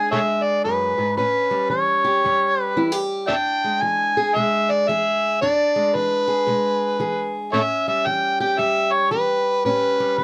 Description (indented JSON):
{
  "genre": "acoustic country blues, solo or duo",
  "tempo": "113 BPM",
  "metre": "4/4",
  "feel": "swing 64% on 8ths",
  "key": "E mixolydian",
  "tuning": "A4 = 441 Hz",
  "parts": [
    { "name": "overdriven harmonica", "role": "melody", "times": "0.0-10.2 s", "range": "A4 to G#5", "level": "-21 LUFS", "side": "equal", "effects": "none" },
    { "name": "fingerpicked steel-string acoustic guitar", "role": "accompaniment", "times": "0.0-10.2 s", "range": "E2 to G#4", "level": "-27 LUFS", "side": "equal", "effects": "none" }
  ],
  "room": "light reverb",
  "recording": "close, detailed microphones",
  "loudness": "-20 LUFS",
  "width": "mono",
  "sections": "0.0-10.2 A section",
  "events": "none",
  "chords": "0.0 E7; 1.2 A7; 3.3 E7; 7.5 A7"
}